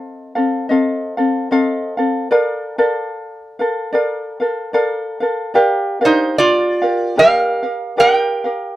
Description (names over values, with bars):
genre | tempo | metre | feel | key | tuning
Hawaiian | 74 BPM | 4/4 | swing 58% on 8ths | Bb major | A4 = 444 Hz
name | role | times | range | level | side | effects
ukulele | accompaniment | 0.0-8.8 s | C4 to F5 | -17 LUFS | equal | none
lap resonator guitar | melody | 6.0-8.8 s | Eb4 to G5 | -14 LUFS | right 2 dB | none
room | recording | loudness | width
light reverb | dry, close 1970s-style studio recording | -14 LUFS | side -15 dB against mid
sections
0.0-5.6 A section; 5.6-8.8 A section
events
none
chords
0.0 F7; 2.3 Bbmaj7; 5.6 Bb6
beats
0.69 1.50 | 2.31 3.12 3.93 4.74 | 5.55 6.36 7.17 7.98